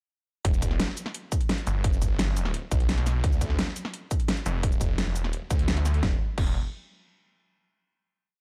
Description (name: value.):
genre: dark technical drum and bass.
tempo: 172 BPM.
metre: 4/4.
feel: straight.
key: E phrygian.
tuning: A4 = 440 Hz.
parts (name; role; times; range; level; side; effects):
snarling distorted saw bass; bass; 0.4-6.5 s; E1 to D2; -29 LUFS; equal; distortion, tube saturation.
dubstep drum kit; drums; 0.4-6.4 s; crash cymbal, hi-hat, shaker, snare drum; -34 LUFS; equal; none.
electronic kick drum; drums; 0.4-6.4 s; none; -29 LUFS; equal; none.
room: little or no reverb.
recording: dark, warm production.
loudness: -27 LUFS.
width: mono.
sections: 0.4-6.0 drop; 6.0-7.4 final note.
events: drop 0.4-6.0.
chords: none.